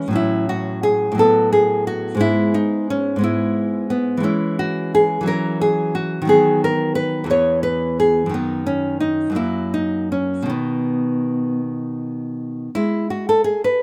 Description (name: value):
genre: classical, baroque-style dance for nylon-string guitar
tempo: 52-60 BPM (dotted quarters)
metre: 6/8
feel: rubato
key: E major, B major from 4.3 s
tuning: A4 = 442 Hz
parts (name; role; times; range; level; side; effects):
- nylon-string guitar; solo; 0.0-13.8 s; E2 to C#5; -19 LUFS; equal; none
room: small room ambience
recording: rough home demo mix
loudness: -19 LUFS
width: mono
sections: 0.0-12.8 A section; 12.8-13.8 A section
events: none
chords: 0.1 F#m/A; 1.2 B5/A; 2.2 E/G#; 4.3 C#m/E; 5.3 F#5/E; 6.3 B/D#; 7.3 E6; 8.3 Badd9/F#; 9.4 F#; 10.5 B; 12.8 N.C.